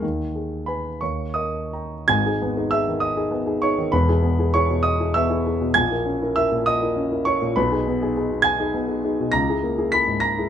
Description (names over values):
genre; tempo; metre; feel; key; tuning
classical, romantic character piece for solo piano; 53-70 BPM (dotted quarters); 6/8; rubato; G# minor; A4 = 440 Hz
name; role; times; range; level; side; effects
warm concert grand piano; solo; 0.0-10.5 s; E1 to B6; -19 LUFS; equal; none
room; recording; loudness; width
light reverb; minimal, uncompressed stereo recording; -19 LUFS; side -9 dB against mid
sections
0.0-2.1 A section; 2.1-10.5 B section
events
none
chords
0.0 G#m/D#; 1.0 D#; 2.1 G#m; 3.9 E; 5.8 A#m7b5; 7.6 G#m/B; 9.3 A#m7b5/C#